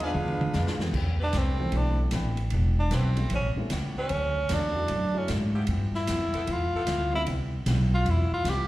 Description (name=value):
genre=jazz, big band swing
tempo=152 BPM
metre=4/4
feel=swing 65% on 8ths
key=A minor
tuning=A4 = 445 Hz
part: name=edgy saxophone section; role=melody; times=0.0-0.8 s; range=D4 to F5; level=-32 LUFS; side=left 1 dB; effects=slapback echo
part: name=clear trombone section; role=second line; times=0.0-0.8 s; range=B3 to F4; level=-39 LUFS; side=right 3 dB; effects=slapback echo
part: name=archtop guitar, miked and amplified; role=accompaniment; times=0.0-8.7 s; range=G2 to B4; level=-38 LUFS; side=left 4 dB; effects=slapback echo
part: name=upright bass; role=bass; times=0.0-8.7 s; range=E1 to G#2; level=-26 LUFS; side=equal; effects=none
part: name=swinging big-band drum kit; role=drums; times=0.0-8.6 s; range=crash cymbal, hi-hat, kick drum, ride cymbal, snare drum, toms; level=-36 LUFS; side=right 1 dB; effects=none
part: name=dark baby grand piano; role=accompaniment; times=0.8-7.3 s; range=E3 to G4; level=-36 LUFS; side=equal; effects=slapback echo
part: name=bright tenor saxophone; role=melody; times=1.2-8.7 s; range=C4 to G4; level=-30 LUFS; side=equal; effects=none
part: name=bright saxophone section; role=sustained chords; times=1.2-7.9 s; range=F3 to B4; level=-41 LUFS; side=equal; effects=none
room=little or no reverb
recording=live gig heard through the venue's PA, club reverb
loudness=-24 LUFS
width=side -16 dB against mid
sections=0.9-8.7 A section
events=drum fill 0.1-0.9; tenor saxophone solo 0.9-8.7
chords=0.1 E7b9; 0.9 Am9; 2.5 Em7; 3.3 A9; 4.1 Dmaj7; 5.7 G13; 7.3 Cmaj7